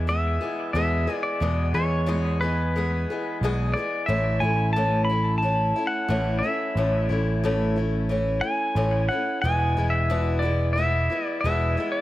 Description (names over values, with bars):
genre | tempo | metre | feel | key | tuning
folk rock and heartland rock | 90 BPM | 4/4 | straight | E mixolydian | A4 = 440 Hz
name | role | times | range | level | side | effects
picked old ladder-braced acoustic guitar | accompaniment | 0.0-12.0 s | E2 to G#4 | -27 LUFS | left 2 dB | none
picked electric bass | bass | 0.0-11.8 s | E1 to E2 | -24 LUFS | equal | none
pedal steel guitar | melody | 0.1-12.0 s | B4 to B5 | -26 LUFS | equal | digital delay
room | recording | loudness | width
light reverb, small room ambience | none | -22 LUFS | side -15 dB against mid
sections
0.0-12.0 A section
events
none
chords
0.0 E; 4.1 A; 9.4 E